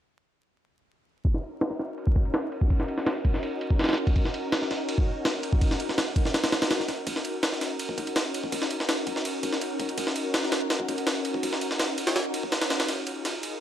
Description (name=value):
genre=drum and bass, jungle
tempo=165 BPM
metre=4/4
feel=straight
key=Eb minor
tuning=A4 = 440 Hz
part: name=soft string machine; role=sustained chords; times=1.5-13.6 s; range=Db4 to Bb4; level=-31 LUFS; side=left 1 dB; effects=ensemble chorus
part: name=jungle sampler-style drum kit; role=drums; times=1.2-13.5 s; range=kick drum, ride cymbal, snare drum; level=-26 LUFS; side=equal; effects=overdrive, high-pass filter on cymbals, low-pass filter on cymbals, studio ambience, high-pass filter on kick, low-pass filter on kick, high-pass filter on snare, low-pass filter on snare
room=moderate lush hall reverb, RT60 1.6 s, digital ambience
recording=vinyl crackle, high-pass filter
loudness=-25 LUFS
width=side -10 dB against mid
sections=1.3-7.1 A section; 7.1-13.6 B section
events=filter sweep on drum 1.3-7.1; build-up 7.1-13.6; drum fill 12.9-13.6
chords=1.3 Ebm7; 12.9 Bb7sus4